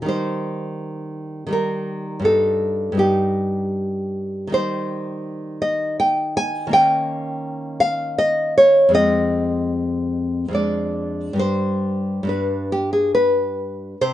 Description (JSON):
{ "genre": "romantic piece for solo classical guitar", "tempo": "67-86 BPM", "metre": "3/4", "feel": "rubato", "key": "unclear", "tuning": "A4 = 437 Hz", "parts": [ { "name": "nylon-string guitar", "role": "solo", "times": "0.0-14.1 s", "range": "F2 to Ab5", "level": "-18 LUFS", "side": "equal", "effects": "none" } ], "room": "light reverb", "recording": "band playing live in one room, nothing above 10.6 kHz", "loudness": "-18 LUFS", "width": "side -13 dB against mid", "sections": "0.0-14.0 A section", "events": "none", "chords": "0.1 Eb; 2.3 Eb/G; 4.5 Cm/Eb; 6.7 Eb7; 9.0 Fm; 10.6 Ddim/F; 11.4 G" }